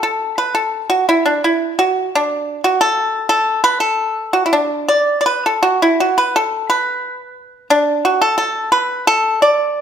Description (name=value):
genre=chinese traditional, Chinese solo plucked strings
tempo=82-90 BPM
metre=2/4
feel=rubato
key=D gong mode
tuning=A4 = 440 Hz
part: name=pipa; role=solo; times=0.0-9.8 s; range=D3 to D5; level=-14 LUFS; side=equal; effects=none
room=light reverb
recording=none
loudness=-14 LUFS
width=side -8 dB against mid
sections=0.0-9.8 A section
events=none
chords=none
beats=0.35 | 1.05 1.75 | 2.43 3.12 | 3.82 4.54 | 5.26 6.00 | 6.71 7.38 | 8.05 8.73 | 9.42